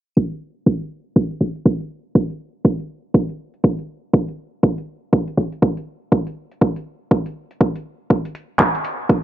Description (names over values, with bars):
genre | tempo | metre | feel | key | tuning
deep house | 121 BPM | 4/4 | swing 60% on 16ths | none | none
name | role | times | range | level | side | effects
deep house drum kit | drums | 0.2-9.2 s | handclaps, hi-hat | -19 LUFS | right 1 dB | none
electronic kick drum | drums | 0.2-9.2 s | none | -16 LUFS | equal | high-pass filter on kick, high-pass filter on room
room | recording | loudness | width
little or no reverb | low-pass filter | -18 LUFS | side -13 dB against mid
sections
0.2-9.2 A section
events
filter sweep 0.2-9.2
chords
none